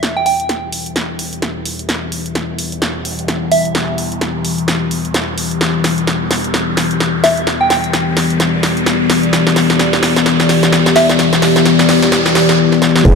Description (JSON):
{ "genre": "bass house", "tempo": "129 BPM", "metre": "4/4", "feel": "swing 59% on 16ths", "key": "E minor", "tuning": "A4 = 441 Hz", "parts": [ { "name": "dark analog pad", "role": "sustained chords", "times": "0.0-13.2 s", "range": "E3 to E5", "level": "-15 LUFS", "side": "left 3 dB", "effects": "chorus, sidechain pumping" }, { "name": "big-room dance drum kit", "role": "drums", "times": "0.0-13.2 s", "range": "crash cymbal, hi-hat, snare drum", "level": "-16 LUFS", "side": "right 1 dB", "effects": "high-pass filter on hats, small room ambience, high-pass filter on snare, high-pass filter on cymbals" }, { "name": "riser and impact", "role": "sound effects", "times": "0.0-13.2 s", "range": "none", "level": "-24 LUFS", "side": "right 1 dB", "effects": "none" }, { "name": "soft synth bell", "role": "melody", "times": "0.2-0.3, 3.5-3.6, 7.2-7.8, 11.0-11.1 s", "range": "E5 to G5", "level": "-16 LUFS", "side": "right 2 dB", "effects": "chorus, phaser, tape echo" }, { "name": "metallic wobble bass", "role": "bass", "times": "13.1-13.2 s", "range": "E1", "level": "-8 LUFS", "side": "equal", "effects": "chorus, overdrive, sidechain pumping" }, { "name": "electronic kick drum", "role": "drums", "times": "13.1-13.2 s", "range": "none", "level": "-11 LUFS", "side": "equal", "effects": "small room ambience" } ], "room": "moderate lush hall reverb, RT60 1.6 s", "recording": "dark, warm production", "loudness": "-12 LUFS", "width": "side -5 dB against mid", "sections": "0.0-13.1 A section", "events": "build-up 0.0-13.1; drum fill 0.0-12.6, 12.7-13.1; riser 0.0-12.6; filter sweep on analog synth pad 0.0-13.1", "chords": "0.0 Em" }